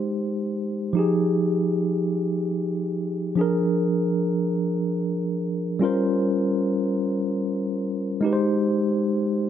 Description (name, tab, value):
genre	soul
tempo	free time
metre	none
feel	none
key	unclear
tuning	A4 = 440 Hz
part	mellow tine electric piano	solo	0.0-9.5 s	F3 to C5	-22 LUFS	equal	medium stereo tremolo
room	light reverb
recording	none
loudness	-22 LUFS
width	side -9 dB against mid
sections	0.0-8.2 A section; 8.2-9.5 B section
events	none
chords	0.0 Abmaj7; 1.0 Fm9; 3.4 Bb7/F; 5.8 Bbm69/G; 8.2 Abmaj7